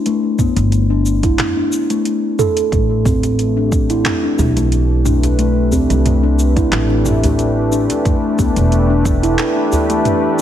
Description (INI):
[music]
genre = organic downtempo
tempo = 90 BPM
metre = 4/4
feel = swing 54% on 16ths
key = A minor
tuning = A4 = 436 Hz
[part]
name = steel tongue drum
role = arpeggios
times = 0.1-10.4 s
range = A3 to A4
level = -17 LUFS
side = left 1 dB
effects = vintage 12-bit sampler grit, ping-pong delay
[part]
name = deep house drum kit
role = drums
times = 0.1-10.4 s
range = cabasa, handclaps, hi-hat, toms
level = -22 LUFS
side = right 2 dB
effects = none
[part]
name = electronic kick drum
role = drums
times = 0.4-9.2 s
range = none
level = -17 LUFS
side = right 1 dB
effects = none
[part]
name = upright bass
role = bass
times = 0.6-9.3 s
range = E1 to C2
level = -16 LUFS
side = right 1 dB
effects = sidechain pumping
[part]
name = warm analog pad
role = sustained chords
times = 2.7-10.4 s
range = E3 to B4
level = -20 LUFS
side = equal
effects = chorus, sidechain pumping
[part]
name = djembe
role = percussion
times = 3.1-10.0 s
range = none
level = -22 LUFS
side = equal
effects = none
[sound]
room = light reverb, studio ambience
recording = none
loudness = -13 LUFS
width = side -10 dB against mid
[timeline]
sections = 0.0-10.4 A section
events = none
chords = 0.0 Em7 (rootless); 2.7 Am7; 8.1 Em7